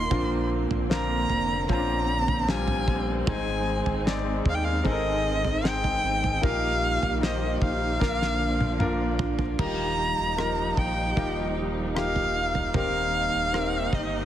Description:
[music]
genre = pop ballad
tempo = 76 BPM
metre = 4/4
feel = straight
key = Eb major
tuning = A4 = 442 Hz
[part]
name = rich erhu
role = melody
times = 0.0-14.2 s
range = Eb5 to C6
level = -28 LUFS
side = equal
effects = none
[part]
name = clear concert grand piano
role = accompaniment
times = 0.0-14.2 s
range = Ab2 to D5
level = -30 LUFS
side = left 3 dB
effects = none
[part]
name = warm studio string section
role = sustained chords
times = 0.0-14.2 s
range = D3 to Eb4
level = -34 LUFS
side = right 1 dB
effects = none
[part]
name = picked steel-string acoustic guitar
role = arpeggios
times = 0.0-14.2 s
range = Ab2 to Ab4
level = -35 LUFS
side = right 8 dB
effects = none
[part]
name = sub bass with octave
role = bass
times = 0.0-14.2 s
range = Eb1 to Eb2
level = -31 LUFS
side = equal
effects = none
[part]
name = damped 70s drum kit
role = drums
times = 0.1-14.1 s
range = crash cymbal, kick drum, rim click, snare drum, toms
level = -29 LUFS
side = equal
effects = none
[sound]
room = light reverb, small room ambience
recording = heavily compressed radio sound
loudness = -23 LUFS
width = side -11 dB against mid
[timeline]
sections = 0.0-9.6 A section; 9.6-14.2 B section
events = drum fill 8.0-9.6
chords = 0.1 Bbadd9; 3.3 Ab; 6.4 Eb/Bb; 8.0 Bb; 9.6 Ebadd9; 12.7 Cm7/Eb

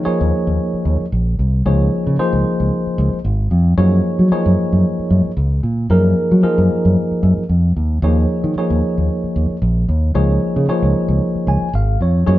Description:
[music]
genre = jazz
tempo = 113 BPM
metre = 4/4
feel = swing 55% on 16ths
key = unclear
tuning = A4 = 438 Hz
[part]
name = bright tine electric piano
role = accompaniment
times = 0.0-12.4 s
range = F3 to Ab5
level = -18 LUFS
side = equal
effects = medium stereo tremolo
[part]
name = fingered electric bass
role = bass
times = 0.0-12.4 s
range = Ab1 to Gb3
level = -15 LUFS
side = equal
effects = none
[sound]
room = moderate stone room reverb, RT60 1.0 s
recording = band playing live in one room, nothing above 7.5 kHz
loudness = -14 LUFS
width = side -15 dB against mid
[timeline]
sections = 0.0-12.4 A section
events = tine electric piano fill 11.2-12.3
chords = 0.0 Eb9sus4; 1.7 Dbmaj9; 3.8 Gbmaj9; 8.0 Eb9sus4; 10.2 Dbadd9

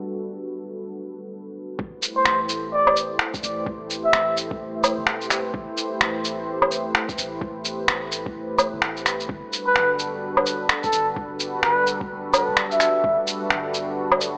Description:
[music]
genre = future garage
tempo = 128 BPM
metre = 4/4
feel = swing 61% on 16ths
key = A dorian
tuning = A4 = 440 Hz
[part]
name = dark analog pad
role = sustained chords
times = 0.0-14.4 s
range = G3 to C5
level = -31 LUFS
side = equal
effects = chorus, sidechain pumping
[part]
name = soft 808-style bass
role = bass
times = 1.8-14.4 s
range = D1 to A1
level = -45 LUFS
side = equal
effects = sidechain pumping
[part]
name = electronic kick drum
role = drums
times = 1.8-13.2 s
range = none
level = -35 LUFS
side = equal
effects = overdrive
[part]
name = electronic shaker, finger snaps and woodblock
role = drums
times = 2.0-14.3 s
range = none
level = -24 LUFS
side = equal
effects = overdrive
[part]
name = trumpet with bucket mute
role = melody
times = 2.2-4.4, 9.7-13.2 s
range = A4 to E5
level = -25 LUFS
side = equal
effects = analog delay
[sound]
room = moderate lush hall reverb, RT60 2.0 s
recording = small speaker sound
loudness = -23 LUFS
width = mono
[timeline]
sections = 0.0-1.8 A section; 1.8-14.4 B section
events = none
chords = 0.0 Gmaj7; 1.8 Am7; 9.3 Gmaj7

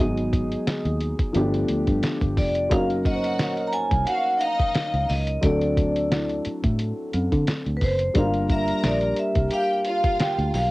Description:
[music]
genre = lush 1970s-style soul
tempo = 88 BPM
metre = 4/4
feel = swing 54% on 16ths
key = unclear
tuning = A4 = 439 Hz
[part]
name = vibraphone with medium hard mallets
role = melody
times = 0.0-10.7 s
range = B4 to Bb5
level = -25 LUFS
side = equal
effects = cassette tape
[part]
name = dark concert grand piano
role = accompaniment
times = 0.0-10.7 s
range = F3 to Bb4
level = -26 LUFS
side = left 1 dB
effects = cassette tape
[part]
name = fingered electric bass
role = bass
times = 0.0-10.7 s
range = F1 to D3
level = -26 LUFS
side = equal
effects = none
[part]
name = lo-fi sampler-style drum kit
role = drums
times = 0.2-10.7 s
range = hi-hat, kick drum, snare drum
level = -25 LUFS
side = equal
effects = cassette tape
[part]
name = celesta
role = texture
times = 2.7-8.5 s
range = C4 to C5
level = -33 LUFS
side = equal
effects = cassette tape
[part]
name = warm studio string section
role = second line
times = 3.0-10.5 s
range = Eb4 to Bb5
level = -30 LUFS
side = right 1 dB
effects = cassette tape
[sound]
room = moderate booth ambience, RT60 0.2 s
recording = home recording on cassette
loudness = -20 LUFS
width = side -20 dB against mid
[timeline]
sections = 0.0-10.7 A section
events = none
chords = 0.0 Abm7; 1.3 G9; 2.7 Gb6; 5.4 D7; 8.2 Gm7

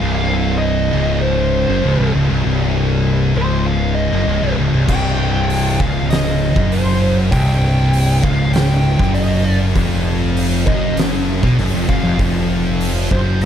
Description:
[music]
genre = stoner and doom metal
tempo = 98 BPM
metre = 4/4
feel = straight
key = unclear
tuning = A4 = 439 Hz
[part]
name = fuzz lead guitar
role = melody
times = 0.0-13.5 s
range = C5 to G5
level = -22 LUFS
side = right 1 dB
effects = wah, distortion, slapback echo
[part]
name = heavy high-gain guitar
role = riff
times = 0.0-13.5 s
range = C2 to B2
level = -24 LUFS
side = equal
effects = distortion
[part]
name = thick fuzz guitar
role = riff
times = 0.0-13.5 s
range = C2 to B2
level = -20 LUFS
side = left 8 dB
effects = distortion
[part]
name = thick fuzz guitar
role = riff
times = 0.0-13.5 s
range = C2 to B2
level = -21 LUFS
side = right 9 dB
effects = distortion
[part]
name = fuzz picked electric bass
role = bass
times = 0.0-13.5 s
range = C1 to B1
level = -20 LUFS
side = equal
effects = overdrive, tube saturation
[part]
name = oversized low-tuned drum kit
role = drums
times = 4.9-13.5 s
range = crash cymbal, hi-hat, kick drum, snare drum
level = -20 LUFS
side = equal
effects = none
[sound]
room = light reverb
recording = dark, warm production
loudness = -14 LUFS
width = side -9 dB against mid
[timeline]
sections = 0.0-13.5 A section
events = none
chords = 0.0 Cm; 9.8 Ebmadd9/F (rootless)

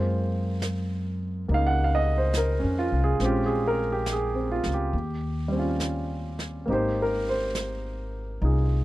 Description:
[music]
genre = jazz ballad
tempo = 69 BPM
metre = 4/4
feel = swing 69% on 8ths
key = unclear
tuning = A4 = 441 Hz
[part]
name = warm baby grand piano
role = accompaniment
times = 0.0-8.8 s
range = G3 to Gb5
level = -27 LUFS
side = right 1 dB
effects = none
[part]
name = upright bass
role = bass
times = 0.0-8.8 s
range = Ab1 to Gb2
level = -27 LUFS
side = equal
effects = none
[part]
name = jazz brush drum kit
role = drums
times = 0.6-8.8 s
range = brushed snare drum, hi-hat, snare drum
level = -38 LUFS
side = right 1 dB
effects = none
[sound]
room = little or no reverb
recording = dry, close 1970s-style studio recording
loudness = -24 LUFS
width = side -16 dB against mid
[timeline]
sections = 0.0-8.8 A section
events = none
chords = 0.0 Gbmaj9#11; 3.2 Bbm9; 4.9 Eb13; 6.7 Abmaj9

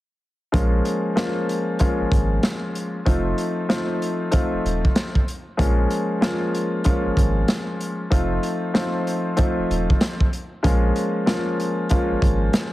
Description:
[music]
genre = hip hop, boom-bap hip-hop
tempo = 95 BPM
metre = 4/4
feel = swing 62% on 16ths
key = Bb minor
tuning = A4 = 444 Hz
[part]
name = dark concert grand piano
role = accompaniment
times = 0.5-12.7 s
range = F3 to F4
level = -23 LUFS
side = left 1 dB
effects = high-pass filter, low-pass filter
[part]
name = soft dub sub bass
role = bass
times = 0.5-12.5 s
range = Eb1 to Bb1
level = -23 LUFS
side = equal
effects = none
[part]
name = crunchy breakbeat drum kit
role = drums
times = 0.5-12.7 s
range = hi-hat, kick drum, snare drum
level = -21 LUFS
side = equal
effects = none
[sound]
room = light reverb, small room ambience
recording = heavily compressed radio sound, multiband compression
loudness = -19 LUFS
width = side -16 dB against mid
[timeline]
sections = 0.5-5.6 A section; 5.6-12.7 B section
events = none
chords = 0.5 Bbm7; 3.1 F7; 5.6 Bbm7; 8.1 F7; 10.6 Bbm7

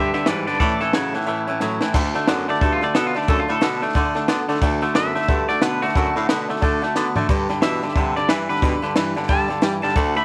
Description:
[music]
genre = rockabilly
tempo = 180 BPM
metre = 4/4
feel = swing 60% on 8ths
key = D major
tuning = A4 = 440 Hz
[part]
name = twangy electric guitar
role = melody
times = 0.0-10.2 s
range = F4 to B5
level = -27 LUFS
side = equal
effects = tremolo, tape echo
[part]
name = honky-tonk upright piano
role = accompaniment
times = 0.0-10.2 s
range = B4 to D6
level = -34 LUFS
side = equal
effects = none
[part]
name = picked steel-string acoustic guitar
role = accompaniment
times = 0.0-10.2 s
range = A2 to B4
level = -33 LUFS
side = equal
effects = none
[part]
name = clean electric guitar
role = riff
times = 0.0-10.2 s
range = G2 to B3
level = -26 LUFS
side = equal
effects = none
[part]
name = clear baritone saxophone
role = bass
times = 0.0-10.2 s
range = D2 to G3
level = -28 LUFS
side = equal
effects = none
[part]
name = compact cocktail drum kit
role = drums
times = 0.1-10.2 s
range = crash cymbal, hi-hat, kick drum, snare drum, toms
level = -25 LUFS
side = equal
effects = none
[sound]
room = light reverb, small room ambience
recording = none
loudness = -20 LUFS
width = mono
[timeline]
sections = 0.0-1.9 A section; 1.9-10.2 B section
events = break 1.3-1.9; drum fill 1.6-1.9, 7.0-7.3; clean electric guitar solo 1.9-10.2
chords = 0.0 G; 0.6 A; 1.9 D; 7.3 G

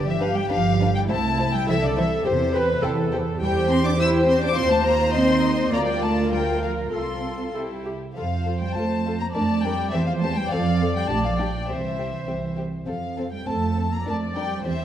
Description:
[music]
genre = quick classical-period movement for string orchestra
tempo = 103 BPM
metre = 2/4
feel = straight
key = C major, F major from 3.4 s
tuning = A4 = 441 Hz
[part]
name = warm chamber violin section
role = melody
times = 0.0-14.8 s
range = C5 to E6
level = -28 LUFS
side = left 5 dB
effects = none
[part]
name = rich studio viola section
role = accompaniment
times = 0.0-14.8 s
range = E4 to D5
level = -28 LUFS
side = right 1 dB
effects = none
[part]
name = dark chamber cello section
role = bass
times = 0.0-14.8 s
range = C3 to E4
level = -26 LUFS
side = right 3 dB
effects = none
[part]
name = dark symphonic double bass section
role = bass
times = 0.0-14.8 s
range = G1 to F2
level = -27 LUFS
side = right 2 dB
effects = none
[part]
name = warm chamber violin section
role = second line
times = 0.2-14.7 s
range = C4 to Eb5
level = -28 LUFS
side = left 3 dB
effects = none
[sound]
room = moderate scoring stage reverb, RT60 1.8 s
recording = dark, warm production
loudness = -20 LUFS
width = side -10 dB against mid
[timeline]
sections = 0.0-8.2 A section; 8.2-14.8 B section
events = none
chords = 0.0 G7; 1.1 C; 2.3 C/E; 4.6 F7/Eb; 5.7 Bb/D; 6.9 F/C; 7.6 C; 8.2 F; 9.4 G7(no3)/F; 9.9 C/E; 10.5 N.C.; 11.1 Gm/Bb; 11.7 C; 12.9 F; 14.1 Gm7/F

